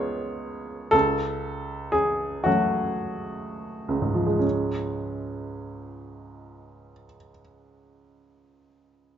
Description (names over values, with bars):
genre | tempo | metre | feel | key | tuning
classical, romantic character piece for solo piano | 27-47 BPM (dotted quarters) | 6/8 | rubato | Db major | A4 = 440 Hz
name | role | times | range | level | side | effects
clear upright piano | solo | 0.0-9.2 s | Db2 to Db5 | -24 LUFS | equal | none
room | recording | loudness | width
moderate large studio reverb, RT60 1.3 s | nothing above 7.6 kHz | -24 LUFS | side -9 dB against mid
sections
0.0-4.4 A section; 4.4-7.9 B section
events
slowing down 0.0-4.4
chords
0.0 Db7; 0.9 Gbm/Db; 4.4 Db